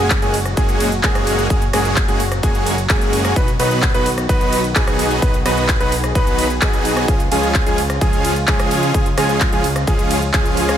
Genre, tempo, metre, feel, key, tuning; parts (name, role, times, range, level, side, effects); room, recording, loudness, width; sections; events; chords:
EDM, festival progressive house; 129 BPM; 4/4; straight; F# major; A4 = 441 Hz
lush unison pad; sustained chords; 0.0-10.8 s; A#2 to G#4; -27 LUFS; equal; chorus, sidechain pumping
warm grand piano; arpeggios; 0.0-10.8 s; G#4 to B4; -23 LUFS; right 1 dB; sidechain pumping, tape echo
big supersaw lead; riff; 0.0-10.8 s; E#3 to B4; -20 LUFS; equal; sidechain pumping, tape echo
fat analog bass; bass; 0.0-10.8 s; F#1 to C#2; -23 LUFS; equal; sidechain pumping
big-room dance drum kit; drums; 0.1-10.8 s; handclaps, hi-hat, ride cymbal, rim click; -22 LUFS; equal
electronic kick drum; drums; 0.1-10.4 s; -18 LUFS; equal
digital ambience; -14 LUFS; side -10 dB against mid
0.0-10.8 A section
0.0 F#add9; 3.4 B; 7.1 C#